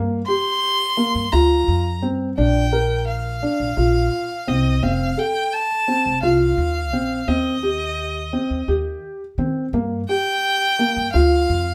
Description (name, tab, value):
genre	contemporary instrumental, chamber music in an uneven meter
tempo	171 BPM (eighths)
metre	7/8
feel	straight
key	G minor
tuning	A4 = 440 Hz
part	felt-muted upright piano	arpeggios	0.0-11.7 s	Bb3 to Bb4	-24 LUFS	equal	none
part	upright bass	bass	0.0-11.7 s	F1 to Eb3	-25 LUFS	equal	none
part	clear violin	melody	0.3-11.7 s	Eb5 to C6	-24 LUFS	equal	none
room	moderate studio reverb, RT60 0.8 s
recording	none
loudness	-20 LUFS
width	mono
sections	0.0-11.7 A section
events	none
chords	0.0 Gm7; 2.4 Bb; 4.8 F7; 7.3 Eb6; 9.7 Gm7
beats	0.27 0.62 0.97 1.32 1.67 2.02 | 2.37 2.72 3.07 3.42 3.77 4.12 4.47 | 4.82 5.17 5.52 5.87 6.22 6.57 6.92 | 7.28 7.62 7.98 8.33 8.68 9.03 9.38 | 9.73 10.08 10.43 10.79 11.14 11.49